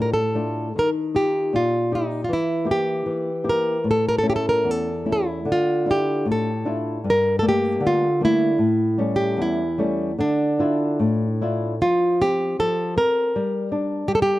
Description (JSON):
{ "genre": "fado", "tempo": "71-82 BPM", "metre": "2/4", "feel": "rubato", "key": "D harmonic minor", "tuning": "A4 = 441 Hz", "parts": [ { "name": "nylon-string guitar", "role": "melody", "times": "0.0-14.4 s", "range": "D4 to Bb4", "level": "-21 LUFS", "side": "right 1 dB", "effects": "none" }, { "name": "flamenco guitar", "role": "accompaniment", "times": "0.0-14.4 s", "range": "E2 to G4", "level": "-24 LUFS", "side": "left 2 dB", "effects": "none" } ], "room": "studio reverb", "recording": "dry, close 1970s-style studio recording", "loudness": "-19 LUFS", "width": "side -16 dB against mid", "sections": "0.0-11.8 A section; 11.8-14.4 B section", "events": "none", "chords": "0.0 Dm; 0.8 Ebadd9; 2.3 Edim; 3.9 A; 5.5 Dmadd9; 7.1 Gmadd9; 8.6 A7; 10.2 Dmadd9; 11.8 F5; 13.3 G5" }